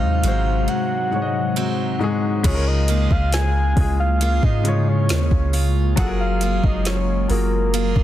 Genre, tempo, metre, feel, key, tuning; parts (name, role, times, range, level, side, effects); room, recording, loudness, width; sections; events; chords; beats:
contemporary R&B; 68 BPM; 4/4; straight; Db major; A4 = 439 Hz
soft octave-layered synth lead; melody; 0.0-8.0 s; Bb4 to Ab5; -26 LUFS; left 1 dB; chorus, digital delay
warm grand piano; accompaniment; 0.0-8.0 s; Ab2 to Eb5; -25 LUFS; left 3 dB
glassy FM pad; sustained chords; 0.0-8.0 s; C3 to F4; -27 LUFS; left 1 dB; ensemble chorus, built-in reverb, sidechain pumping
picked steel-string acoustic guitar; arpeggios; 0.0-8.0 s; Ab2 to Ab4; -30 LUFS; right 7 dB
soft 808-style bass; bass; 0.0-8.0 s; Gb1 to Ab2; -20 LUFS; equal
smooth R&B drum kit; drums; 0.2-8.0 s; crash cymbal, hi-hat, kick drum, snare drum; -22 LUFS; equal
little or no reverb; dense, heavily limited modern master; -17 LUFS; side -12 dB against mid
0.0-2.4 A section; 2.4-8.0 B section
break 0.7-2.4
0.0 Ab7; 2.4 Db6; 6.0 Gbmaj9
0.68 1.56 | 2.44 3.33 4.21 5.09 | 5.97 6.86 7.74